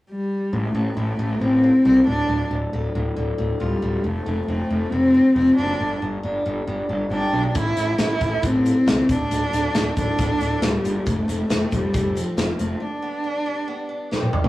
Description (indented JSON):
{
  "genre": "quiet-loud alternative rock",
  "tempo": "137 BPM",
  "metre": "4/4",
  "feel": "straight",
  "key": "D dorian",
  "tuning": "A4 = 440 Hz",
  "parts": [
    { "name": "dark cello", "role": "melody", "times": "0.1-14.1 s", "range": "F3 to E4", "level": "-20 LUFS", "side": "equal", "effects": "none" },
    { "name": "picked acoustic archtop guitar", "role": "arpeggios", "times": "0.5-14.5 s", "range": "D2 to A4", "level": "-31 LUFS", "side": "left 2 dB", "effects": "none" },
    { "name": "fuzz picked electric bass", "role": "bass", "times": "0.5-12.7 s", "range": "D1 to C#2", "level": "-25 LUFS", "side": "equal", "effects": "overdrive" },
    { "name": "loose indie drum kit", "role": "drums", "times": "7.5-14.5 s", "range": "hi-hat, kick drum, snare drum, toms", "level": "-24 LUFS", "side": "equal", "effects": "none" }
  ],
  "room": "light reverb",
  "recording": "rough rehearsal-room recording, small room ambience",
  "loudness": "-19 LUFS",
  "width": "side -16 dB against mid",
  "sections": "0.5-14.5 A section",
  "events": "break 12.8-14.5; drum fill 14.1-14.5",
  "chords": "0.0 N.C.; 0.5 Am; 2.1 Dm; 4.0 F; 5.8 G; 7.6 Am; 9.1 Dm; 11.1 F; 12.8 G"
}